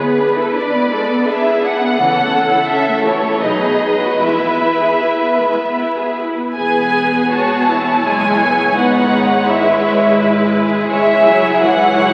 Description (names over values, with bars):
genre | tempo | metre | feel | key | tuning
classical, slow romantic movement for string orchestra | 74-88 BPM | 3/4 | rubato | E major | A4 = 440 Hz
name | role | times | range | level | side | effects
rich studio violin section | melody | 0.0-12.1 s | A4 to A5 | -19 LUFS | equal | none
warm symphonic violin section | second line | 0.0-12.1 s | G#4 to F#5 | -21 LUFS | equal | none
rich symphonic viola section | accompaniment | 0.0-12.1 s | E3 to G#4 | -20 LUFS | equal | none
clear symphonic double bass section | bass | 0.0-12.1 s | E1 to E2 | -34 LUFS | equal | none
rich studio cello section | bass | 0.0-12.1 s | C#2 to B4 | -24 LUFS | equal | none
room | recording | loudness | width
wet concert hall reverb, RT60 2.2 s | very old 78 rpm record, vinyl crackle | -15 LUFS | mono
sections
0.0-6.6 A section; 6.6-12.1 B section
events
none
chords
0.0 E7/D; 2.0 A/C#; 3.4 B; 4.2 E; 8.8 E/G#; 10.9 C#m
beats
0.56 1.28 | 2.00 2.70 3.42 | 4.20 4.99 5.78 | 6.57 7.31 8.04 | 8.76 9.48 10.19 | 10.91 11.62